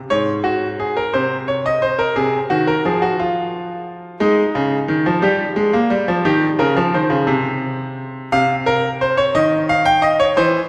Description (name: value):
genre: classical, baroque-style two-part invention for grand piano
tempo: 58 BPM (dotted quarters)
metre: 6/8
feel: straight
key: Db major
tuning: A4 = 440 Hz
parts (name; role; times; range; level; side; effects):
- bright concert grand piano; solo; 0.1-10.6 s; Ab2 to G5; -18 LUFS; equal; none
room: wet concert hall reverb, RT60 2.3 s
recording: lossy compression artefacts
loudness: -17 LUFS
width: mono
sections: 0.1-8.3 A section; 8.3-10.7 B section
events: none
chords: 0.1 Db5/Ab; 1.1 Cm7; 2.2 Ab7/C; 3.2 N.C.; 4.2 Ab5; 5.2 Fmadd9; 6.2 Eb7; 7.3 N.C.; 8.3 F5/C; 9.3 Eb